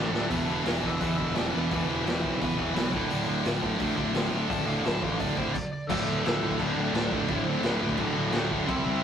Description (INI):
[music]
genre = punk rock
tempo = 172 BPM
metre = 4/4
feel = straight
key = D mixolydian from 5.9 s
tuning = A4 = 440 Hz
[part]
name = overdriven electric guitar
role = melody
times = 0.0-9.0 s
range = F#3 to C6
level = -37 LUFS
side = equal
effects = none
[part]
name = sludgy distorted guitar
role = riff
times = 0.0-9.0 s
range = D2 to C4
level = -28 LUFS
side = equal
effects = overdrive
[part]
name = fuzz picked electric bass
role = bass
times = 0.0-9.0 s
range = D1 to E2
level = -32 LUFS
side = equal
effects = overdrive
[part]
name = raw garage drum kit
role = drums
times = 0.1-8.8 s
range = crash cymbal, hi-hat, kick drum, snare drum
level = -31 LUFS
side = equal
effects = none
[sound]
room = light reverb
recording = rough rehearsal-room recording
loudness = -25 LUFS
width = side -8 dB against mid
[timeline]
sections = 0.0-5.9 A section; 5.9-9.0 B section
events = drum fill 0.0-0.3; stop 5.6-5.9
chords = 0.3 E5; 2.9 D5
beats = | 0.31 0.66 1.01 1.36 | 1.71 2.06 2.41 2.76 | 3.10 3.46 3.80 4.15 | 4.50 4.85 5.20 5.55 | 5.90 6.25 6.60 6.95 | 7.30 7.64 7.99 8.34 | 8.69 9.04